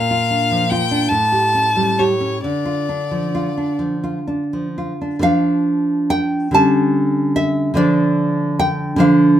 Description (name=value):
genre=romantic duo for violin and classical guitar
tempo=41-50 BPM (dotted quarters)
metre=6/8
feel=rubato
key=D minor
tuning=A4 = 436 Hz
part: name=clear violin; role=melody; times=0.0-3.8 s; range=C#5 to A5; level=-18 LUFS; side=left 2 dB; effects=none
part: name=nylon-string guitar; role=accompaniment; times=0.0-9.4 s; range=A2 to A5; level=-16 LUFS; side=right 1 dB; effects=none
room=moderate small room reverb, RT60 0.5 s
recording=band playing live in one room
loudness=-15 LUFS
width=side -11 dB against mid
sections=0.0-5.2 A section; 5.2-9.4 B section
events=none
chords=0.0 Bb; 1.1 A7; 2.5 Dm; 6.5 A7/D; 7.8 Dm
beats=1.12 | 2.45 3.81 | 5.24 6.54 | 7.77 9.01